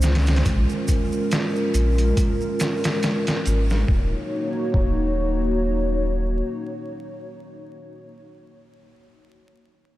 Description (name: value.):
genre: trip hop.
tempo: 70 BPM.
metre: 4/4.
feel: swing 56% on 16ths.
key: Eb minor.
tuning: A4 = 440 Hz.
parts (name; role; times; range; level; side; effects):
dark analog pad; sustained chords; 0.0-8.1 s; G#3 to Db5; -25 LUFS; equal; chorus.
soft dub sub bass; bass; 0.0-6.4 s; Eb1 to Db2; -21 LUFS; equal; tube saturation.
trip hop sampler-style drum kit; drums; 0.0-5.0 s; hi-hat, kick drum, snare drum; -24 LUFS; equal; overdrive, studio ambience.
maracas; percussion; 0.0-3.8 s; none; -39 LUFS; right 2 dB; none.
room: moderate huge ambient reverb, RT60 5.0 s.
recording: dreamy mix soaked in reverb, vinyl crackle.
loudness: -20 LUFS.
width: side -15 dB against mid.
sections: 0.0-3.9 A section; 3.9-7.3 B section.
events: none.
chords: 0.5 Bbm7; 3.9 Ebm7.